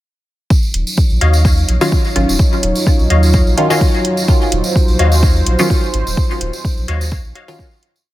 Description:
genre	dub techno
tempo	127 BPM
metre	4/4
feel	swing 54% on 16ths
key	Eb dorian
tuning	A4 = 440 Hz
part	dark analog pad	sustained chords	0.5-8.0 s	Gb3 to Db5	-20 LUFS	right 1 dB	chorus, sidechain pumping
part	electronic kick drum	drums	0.5-7.7 s	none	-13 LUFS	equal	overdrive
part	tambourine	percussion	0.5-8.0 s	none	-25 LUFS	right 2 dB	none
part	soft dub sub bass	bass	0.7-7.3 s	Eb1 to Eb2	-14 LUFS	equal	sidechain pumping
part	electronic hi-hat	drums	0.7-7.9 s	none	-21 LUFS	right 2 dB	none
part	wavetable chord stab	riff	1.2-7.6 s	Gb4 to F5	-23 LUFS	left 4 dB	phaser, sidechain pumping, dub echo
part	filtered dub chord stab	stabs	1.8-7.7 s	Eb3 to F4	-19 LUFS	equal	chorus, phaser, dub echo
room	little or no reverb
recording	none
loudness	-11 LUFS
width	side -15 dB against mid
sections	0.5-8.1 groove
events	fade-out 5.5-8.1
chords	0.5 Ebm9

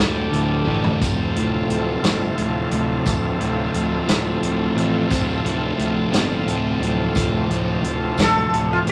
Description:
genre	psychedelic rock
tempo	59 BPM (dotted quarters)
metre	6/8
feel	straight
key	unclear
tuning	A4 = 438 Hz
part	bright tonewheel organ	sustained chords	0.0-8.9 s	F3 to A4	-29 LUFS	equal	slow rotary speaker, overdrive
part	fuzz guitar	riff	0.0-8.9 s	D2 to F3	-26 LUFS	equal	distortion, phaser
part	fuzz picked electric bass	bass	0.0-8.9 s	D1 to A1	-27 LUFS	equal	overdrive
part	hand-pumped harmonium	drone	0.0-8.9 s	D2 to A2	-30 LUFS	equal	none
part	tambourine	percussion	0.2-8.9 s	none	-38 LUFS	equal	none
part	vintage drum kit	drums	0.3-8.9 s	hi-hat, kick drum, snare drum, toms	-26 LUFS	equal	none
part	sitar	melody	8.2-8.9 s	F4 to A4	-21 LUFS	equal	none
room	wet studio reverb, RT60 0.5 s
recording	none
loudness	-21 LUFS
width	mono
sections	0.0-8.9 A section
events	drum fill 0.7-1.0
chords	0.0 Dm; 1.0 F/D

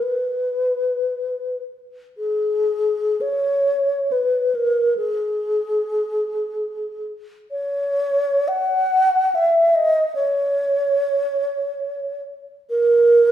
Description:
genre	classical, free, expressive piece for unaccompanied alto flute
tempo	free time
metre	none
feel	none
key	unclear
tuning	A4 = 444 Hz
part	mellow wooden-headed alto flute	solo	0.0-13.3 s	G#4 to F#5	-18 LUFS	equal	none
room	wet recital hall reverb, RT60 1.4 s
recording	recorded in a church or concert hall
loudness	-18 LUFS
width	side -10 dB against mid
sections	0.0-2.2 A section; 2.2-13.3 B section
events	none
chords	none

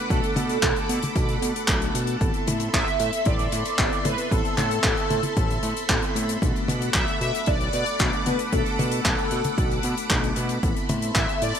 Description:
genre	italo disco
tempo	114 BPM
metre	4/4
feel	straight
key	unclear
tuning	A4 = 441 Hz
part	mellow synth brass	melody	0.0-11.6 s	A4 to E5	-28 LUFS	right 1 dB	chorus, phaser, digital delay
part	string machine, full ensemble	sustained chords	0.0-11.6 s	A4 to D6	-30 LUFS	equal	ensemble chorus
part	barky tine electric piano	stabs	0.0-11.6 s	A3 to A4	-33 LUFS	left 2 dB	medium stereo tremolo, ping-pong delay
part	fat analog bass	bass	0.1-11.5 s	A1 to B2	-29 LUFS	equal	tube saturation
part	damped 70s drum kit	drums	0.1-11.6 s	handclaps, hi-hat, toms	-26 LUFS	left 1 dB	studio reverb
part	electronic kick drum	drums	0.1-11.3 s	none	-27 LUFS	equal	overdrive, studio reverb
room	light reverb, small room ambience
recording	bright 1980s-style digital production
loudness	-21 LUFS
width	side -8 dB against mid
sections	0.0-11.6 A section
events	none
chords	0.0 Bm7; 2.2 Amadd9; 6.4 Bm7; 10.6 Amadd9

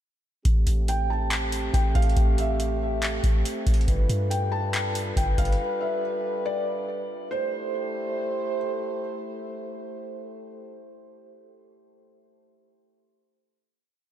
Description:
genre	hip hop, atmospheric cloud-rap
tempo	140 BPM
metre	4/4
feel	half-time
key	A minor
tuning	A4 = 441 Hz
part	mellow French horn section	sustained chords	0.5-10.8 s	G3 to C5	-31 LUFS	right 1 dB	sidechain pumping
part	soft 808-style bass	bass	0.5-5.6 s	G1 to G2	-24 LUFS	equal	none
part	booming analog drum machine	drums	0.5-5.6 s	handclaps, hi-hat, kick drum	-26 LUFS	equal	none
part	felt-muted upright piano	melody	0.9-8.6 s	C5 to A5	-32 LUFS	left 1 dB	wide subtle chorus, tape echo
room	moderate cathedral reverb, RT60 5.6 s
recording	dreamy mix soaked in reverb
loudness	-23 LUFS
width	side -11 dB against mid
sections	0.5-7.3 verse; 7.3-10.7 final chord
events	none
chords	0.5 Am7; 3.9 G9; 7.3 Am7

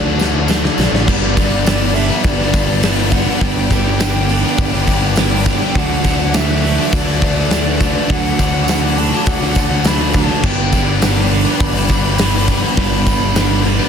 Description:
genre	rock, shoegaze and dream pop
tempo	103 BPM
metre	4/4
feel	straight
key	unclear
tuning	A4 = 440 Hz
part	reedy FM lead	melody	0.0-13.9 s	D5 to B5	-24 LUFS	equal	chorus, slapback echo
part	phased analog pad	sustained chords	0.0-13.9 s	B4 to D6	-28 LUFS	right 5 dB	phaser, chorus
part	crunchy overdriven guitar	riff	0.0-13.9 s	G2 to D4	-22 LUFS	right 12 dB	reverse reverb
part	distorted electric guitar	riff	0.0-13.9 s	G2 to D4	-22 LUFS	equal	overdrive
part	overdriven electric guitar	riff	0.0-13.9 s	D3 to B4	-21 LUFS	left 13 dB	wide subtle chorus
part	fuzz fingered electric bass	bass	0.0-13.8 s	G1 to D2	-18 LUFS	equal	overdrive
part	big rock drum kit	drums	0.2-13.8 s	crash cymbal, hi-hat, kick drum, snare drum	-18 LUFS	equal	none
part	tambourine	percussion	0.2-13.7 s	none	-31 LUFS	right 11 dB	none
room	studio reverb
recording	dense, heavily limited modern master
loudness	-12 LUFS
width	side -7 dB against mid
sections	0.0-1.1 A section; 1.1-13.9 A section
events	drum fill 0.0-1.1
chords	0.0 D6; 1.1 G; 5.8 D6; 10.4 G

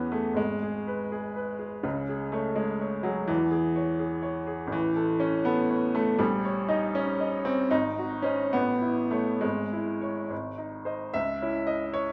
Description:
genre	classical, romantic character piece for solo piano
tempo	64-84 BPM (dotted quarters)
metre	6/8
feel	rubato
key	C# minor from 4.7 s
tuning	A4 = 441 Hz
part	bright upright piano	solo	0.0-12.1 s	G#1 to E5	-28 LUFS	equal	none
room	wet recital hall reverb, RT60 1.8 s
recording	none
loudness	-28 LUFS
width	mono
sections	0.0-11.2 A section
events	none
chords	0.4 G#m; 1.8 C#5; 3.3 C#m/E; 4.7 A; 6.2 D#7/A#; 7.7 G#7; 8.5 A; 9.4 C#m/G#; 10.3 G#; 11.2 C#m

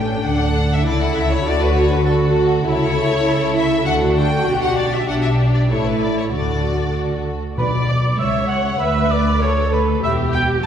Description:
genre	quick classical-period movement for symphony orchestra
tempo	98 BPM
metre	2/4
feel	straight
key	D major, B minor from 7.6 s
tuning	A4 = 440 Hz
part	rich studio violin section	melody	0.0-10.7 s	F#4 to G5	-24 LUFS	left 3 dB	none
part	rich studio violin section	second line	0.0-10.7 s	C#4 to G5	-23 LUFS	left 1 dB	none
part	rich symphonic viola section	accompaniment	0.0-10.7 s	D4 to D5	-22 LUFS	right 1 dB	none
part	dark studio cello section	bass	0.0-10.7 s	C#2 to D3	-22 LUFS	equal	none
part	rich studio double bass section	bass	0.0-10.7 s	E1 to D2	-22 LUFS	right 1 dB	none
part	warm cor anglais	second line	7.6-10.7 s	B4 to G5	-22 LUFS	right 2 dB	none
part	timpani	percussion	7.6-8.1 s	B2	-27 LUFS	equal	none
room	wet scoring stage reverb, RT60 1.6 s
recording	heard from further back in the room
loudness	-15 LUFS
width	side -8 dB against mid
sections	0.0-7.6 A section; 7.6-10.7 B section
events	none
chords	0.3 D; 0.9 A/C#; 1.5 D; 2.7 A/C#; 3.9 D; 4.5 G/B; 5.7 A5; 6.3 D; 7.6 Bm; 8.2 F#5/C#; 8.8 Bm/D; 10.0 Em

